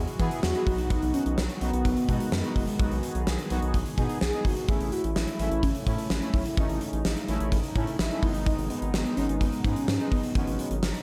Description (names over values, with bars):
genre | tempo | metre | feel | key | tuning
synth-pop | 127 BPM | 4/4 | straight | unclear | A4 = 440 Hz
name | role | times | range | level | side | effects
chorused pulse-width pad | sustained chords | 0.0-11.0 s | B2 to G#4 | -38 LUFS | equal | none
round analog bass | bass | 0.0-10.9 s | F#1 to E3 | -33 LUFS | equal | none
gated 80s drum kit | drums | 0.1-11.0 s | hi-hat, kick drum, snare drum | -31 LUFS | equal | none
analog synth brass | accompaniment | 0.2-10.8 s | G#3 to G#4 | -36 LUFS | equal | chorus
warm velvety synth lead | melody | 0.4-10.6 s | G#3 to G#4 | -33 LUFS | equal | chorus, analog delay
room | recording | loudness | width
light reverb, studio ambience | none | -27 LUFS | mono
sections
0.0-11.0 A section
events
none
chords
0.0 Eadd9; 0.7 B; 4.7 A; 8.2 G#m